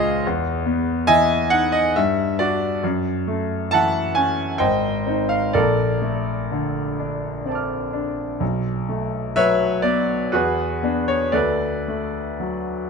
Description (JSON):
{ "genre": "classical, impressionist solo piano", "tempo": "55-75 BPM", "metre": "3/4", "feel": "rubato", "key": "unclear", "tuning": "A4 = 438 Hz", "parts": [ { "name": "clear concert grand piano", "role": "solo", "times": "0.0-12.9 s", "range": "G#1 to F6", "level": "-19 LUFS", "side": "equal", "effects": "none" } ], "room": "light reverb", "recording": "close, detailed microphones", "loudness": "-19 LUFS", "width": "side -5 dB against mid", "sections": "0.0-12.9 A section", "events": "none", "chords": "0.2 E5; 1.9 G5; 2.8 F#m7; 4.6 G#maj7; 5.5 Bbmaj7; 8.4 Bsus2; 10.3 E9; 11.3 D6" }